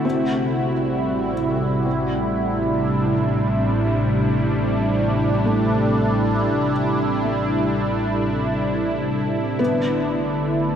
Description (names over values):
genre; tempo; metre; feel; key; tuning
ambient; free time; none; none; unclear; A4 = 441 Hz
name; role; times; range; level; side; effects
warm analog pad; sustained chords; 0.0-10.8 s; C3 to F#4; -20 LUFS; equal; chorus
felt-muted upright piano; arpeggios; 0.0-10.8 s; A3 to C4; -28 LUFS; left 1 dB; tape echo
rich studio double bass section; bass; 0.0-10.8 s; A1; -27 LUFS; equal; none
analog drone; drone; 0.0-10.8 s; A3 to E4; -32 LUFS; right 1 dB; none
room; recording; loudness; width
wet cathedral reverb, RT60 6.5 s; in a vast, echoing space; -18 LUFS; side -8 dB against mid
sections
0.0-10.8 A section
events
none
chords
0.1 C/A; 9.6 D5/A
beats
free time